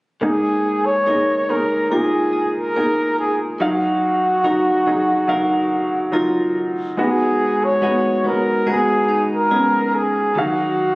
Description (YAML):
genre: pop ballad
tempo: 71 BPM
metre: 4/4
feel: straight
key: unclear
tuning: A4 = 440 Hz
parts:
  - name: warm flugelhorn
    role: melody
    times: 0.2-10.9 s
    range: Gb4 to Db5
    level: -18 LUFS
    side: equal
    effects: none
  - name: clear concert grand piano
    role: accompaniment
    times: 0.2-10.9 s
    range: Ab2 to F5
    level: -20 LUFS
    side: equal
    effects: none
  - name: direct-recorded clean electric guitar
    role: arpeggios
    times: 0.2-10.9 s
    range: Ab2 to Bb4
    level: -29 LUFS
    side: left 1 dB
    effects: wide subtle chorus
room: light reverb, studio ambience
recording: recorded on a phone in the room, club reverb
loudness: -16 LUFS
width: side -23 dB against mid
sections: 0.2-10.9 A section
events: none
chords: 0.2 Absus2; 3.6 Ebmadd9/Gb; 7.0 Abm7; 10.4 Ebmadd9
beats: | 0.22 1.07 1.91 2.76 | 3.60 4.45 5.29 6.14 | 6.98 7.83 8.67 9.52 | 10.36